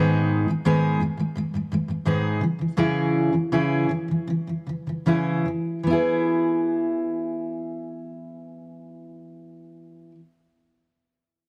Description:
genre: pop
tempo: 74-86 BPM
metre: 4/4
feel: straight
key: E major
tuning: A4 = 445 Hz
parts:
  - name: fingerpicked steel-string acoustic guitar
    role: accompaniment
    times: 0.0-10.2 s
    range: G#2 to G#4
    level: -24 LUFS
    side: equal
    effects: none
room: light reverb, studio reverb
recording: dry, close 1970s-style studio recording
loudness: -24 LUFS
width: mono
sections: 0.0-5.9 A section; 5.9-9.1 B section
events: slowing down 0.0-5.9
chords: 0.0 G#m; 2.4 C#m; 5.9 E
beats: 0.66 1.36 2.07 | 2.79 3.53 4.29 5.07 | 5.87 6.69 7.50 8.32

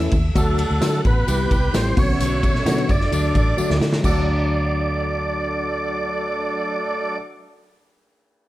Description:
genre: uptempo 1960s-style soul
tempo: 130 BPM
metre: 4/4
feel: straight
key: D major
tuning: A4 = 440 Hz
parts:
  - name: mellow horn section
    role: second line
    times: 0.0-7.2 s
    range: C3 to A4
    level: -33 LUFS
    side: right 1 dB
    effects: none
  - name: warm studio violin section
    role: second line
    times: 0.0-7.2 s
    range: A4 to G6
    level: -36 LUFS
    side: left 1 dB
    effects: none
  - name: tine electric piano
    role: accompaniment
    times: 0.0-7.2 s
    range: D3 to A4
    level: -26 LUFS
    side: left 2 dB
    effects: medium stereo tremolo
  - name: vintage muted fingered electric bass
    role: bass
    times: 0.0-7.2 s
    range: F#1 to D3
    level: -23 LUFS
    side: equal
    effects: none
  - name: vintage drum kit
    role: drums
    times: 0.1-4.1 s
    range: crash cymbal, hi-hat, kick drum, ride cymbal, snare drum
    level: -22 LUFS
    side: equal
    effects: none
  - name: tambourine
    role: percussion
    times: 0.1-4.3 s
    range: none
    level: -38 LUFS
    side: left 5 dB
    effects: none
  - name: tonewheel organ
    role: melody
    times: 0.4-7.2 s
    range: A4 to D5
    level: -24 LUFS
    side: right 2 dB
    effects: overdrive, chorus vibrato, slapback echo
  - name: vibraphone with soft mallets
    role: second line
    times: 0.4-7.2 s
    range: A3 to D4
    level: -32 LUFS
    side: right 3 dB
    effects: none
room: moderate large studio reverb, RT60 1.2 s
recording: dark, warm production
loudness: -18 LUFS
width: side -16 dB against mid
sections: 0.0-4.0 A section; 4.0-7.7 B section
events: drum fill 3.6-4.0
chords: 0.4 D; 1.3 C; 2.0 Bm; 3.1 D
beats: | 0.35 0.81 1.27 1.74 | 2.20 2.66 3.12 3.58 | 4.04 4.50 4.96 5.42 | 5.88 6.34 6.80

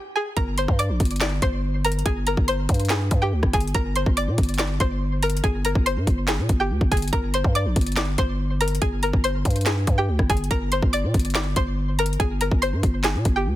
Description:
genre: hip hop, trap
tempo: 142 BPM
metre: 4/4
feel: half-time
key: G phrygian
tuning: A4 = 440 Hz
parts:
  - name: string-like resonator pluck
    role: melody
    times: 0.0-13.6 s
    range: G4 to D6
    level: -26 LUFS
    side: equal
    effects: chorus, tape echo
  - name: growling 808-style bass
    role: bass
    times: 0.4-13.6 s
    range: G1 to Bb2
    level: -24 LUFS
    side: equal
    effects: none
  - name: trap drum kit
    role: drums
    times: 0.4-13.4 s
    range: handclaps, hi-hat, kick drum, rim click, snare drum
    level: -23 LUFS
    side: equal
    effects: none
room: digital ambience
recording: dense, heavily limited modern master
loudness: -20 LUFS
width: side -14 dB against mid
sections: 0.0-7.1 A section; 7.1-13.6 A section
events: break 0.0-0.4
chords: 0.4 Gm; 2.1 Bb7sus2/G; 3.7 Gmadd11; 5.4 Abadd9/G; 7.1 Gm; 8.8 Bb7sus2/G; 10.5 Gmadd11; 12.2 Abadd9/G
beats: | 0.37 0.79 1.21 1.63 | 2.06 2.48 2.90 3.32 | 3.75 4.17 4.59 5.01 | 5.44 5.86 6.28 6.70 | 7.13 7.55 7.97 8.39 | 8.82 9.24 9.66 10.09 | 10.51 10.93 11.35 11.78 | 12.20 12.62 13.04 13.46

